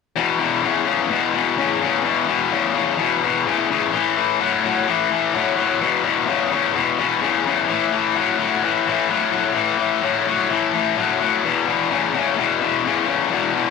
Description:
rock; 128 BPM; 4/4; straight; A4 = 440 Hz
tight distorted guitar; solo; 0.2-13.7 s; E2 to F#3; -17 LUFS; left 7 dB; distortion, tape echo
moderate echo chamber reverb, RT60 2.5 s; -17 LUFS; side -4 dB against mid
0.2-13.7 A section
0.2 E5; 3.9 A5; 5.8 E5; 7.7 A5; 11.4 E5

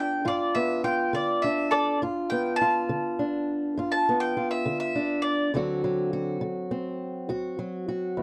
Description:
acoustic country blues, solo or duo; 68 BPM (dotted quarters); 12/8; straight; A4 = 438 Hz
mandolin; melody; 0.0-5.5 s; A4 to A5; -28 LUFS; equal
fingerpicked old ladder-braced acoustic guitar; accompaniment; 0.0-8.2 s; D2 to F#4; -30 LUFS; equal
light reverb; dry, close 1970s-style studio recording; -27 LUFS; mono
0.0-8.2 A section
mandolin solo 0.0-8.2
0.0 G7; 5.5 D7

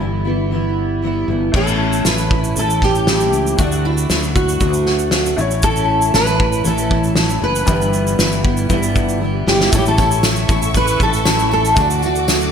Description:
acoustic pop; 117 BPM; 4/4; straight; A mixolydian; A4 = 440 Hz
fingerpicked steel-string acoustic guitar; melody; 0.0-12.5 s; E4 to B4; -19 LUFS; equal; ensemble chorus, ping-pong delay
fingerpicked steel-string acoustic guitar; accompaniment; 0.0-12.5 s; G2 to F#4; -21 LUFS; equal; double-tracked left and right
fretless electric bass; bass; 0.0-12.5 s; F#1 to D2; -20 LUFS; equal; lush chorus
clear upright piano; accompaniment; 1.5-12.5 s; G3 to D5; -28 LUFS; left 4 dB
loose indie drum kit; drums; 1.5-12.5 s; crash cymbal, kick drum, shaker, snare drum; -18 LUFS; equal
dark studio string section; sustained chords; 9.7-12.5 s; A4 to D6; -25 LUFS; left 2 dB
tambourine; percussion; 9.7-12.4 s; -33 LUFS; right 5 dB
moderate lush hall reverb, RT60 2.1 s; bright 1980s-style digital production; -14 LUFS; side -7 dB against mid
0.0-1.5 A section; 1.5-9.7 B section; 9.7-12.5 C section
drum fill 9.2-9.7
0.0 G6; 1.5 A; 3.6 D; 5.4 A; 7.7 G6; 9.7 A; 11.8 D

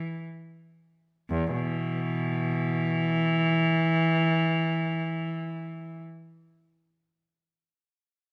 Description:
classical, baroque-style suite movement for unaccompanied cello; free time; A4 = 440 Hz
dark cello; solo; 0.0-6.0 s; E2 to E3; -28 LUFS; equal
wet recital hall reverb, RT60 1.4 s; -27 LUFS; mono
0.0-1.3 A section; 1.3-7.6 B section
slowing down 0.0-1.3

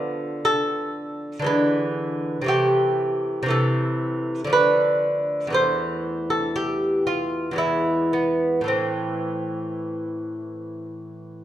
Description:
classical, baroque-style dance for lute; 54-59 BPM; 3/4; rubato; A minor; A4 = 439 Hz
lute; solo; 0.0-11.4 s; E2 to C5; -21 LUFS; equal
moderate recital hall reverb, RT60 1.7 s; minimal, uncompressed stereo recording; -20 LUFS; side -12 dB against mid
0.0-11.4 A section
0.0 Bdim/D; 1.5 E7/D; 2.5 Am/C; 4.5 Bm7b5/D; 5.5 A5/E; 7.6 E; 8.7 Am

